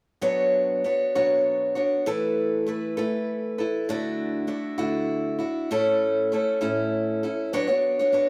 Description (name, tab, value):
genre	rock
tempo	66 BPM (dotted quarters)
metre	6/8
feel	straight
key	unclear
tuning	A4 = 440 Hz
part	picked steel-string acoustic guitar	solo	0.2-8.3 s	A2 to C#5	-25 LUFS	equal	none
room	moderate stone room reverb, RT60 1.4 s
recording	band playing live in one room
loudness	-25 LUFS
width	mono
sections	0.2-7.5 A section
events	none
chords	0.2 Bmadd9; 2.1 Esus4; 3.9 Dadd9; 5.7 A; 7.5 Bmadd9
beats	| 0.25 1.16 | 2.07 2.98 | 3.90 4.81 | 5.72 6.63 | 7.54